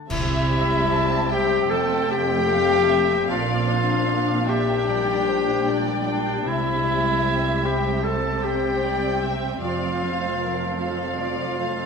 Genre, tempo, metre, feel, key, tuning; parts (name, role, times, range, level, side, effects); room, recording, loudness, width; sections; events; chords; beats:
cinematic, emotional film score for orchestra; 76 BPM; 4/4; rubato; A4 = 444 Hz
concert harp; arpeggios; 0.0-11.9 s; F2 to A5; -30 LUFS; left 7 dB
muted symphonic violin section; melody; 0.1-11.9 s; A4 to A5; -31 LUFS; left 2 dB
muted symphonic violin section; second line; 0.1-11.9 s; D5 to A5; -30 LUFS; equal
warm clarinet; second line; 0.1-11.9 s; D4 to A4; -23 LUFS; left 3 dB
muted studio viola section; accompaniment; 0.1-11.9 s; F3 to D4; -29 LUFS; right 3 dB
muted studio cello section; bass; 0.1-11.9 s; F2 to C3; -30 LUFS; right 4 dB
muted symphonic double bass section; bass; 0.1-11.9 s; F1 to C2; -31 LUFS; right 4 dB
clash cymbals and concert bass drum; percussion; 0.1-1.7 s; -31 LUFS; right 1 dB
wet scoring stage reverb, RT60 1.6 s; minimal, uncompressed stereo recording; -20 LUFS; side -5 dB against mid
0.1-11.9 A section
band accent 0.1-0.9
0.1 C; 1.7 F; 3.3 Bbadd9; 4.9 Gm/Bb; 6.5 C; 9.6 F
| 0.10 0.90 1.70 2.49 | 3.29 4.08 4.87 5.66 | 6.46 7.25 8.04 8.82 | 9.62 10.40 11.17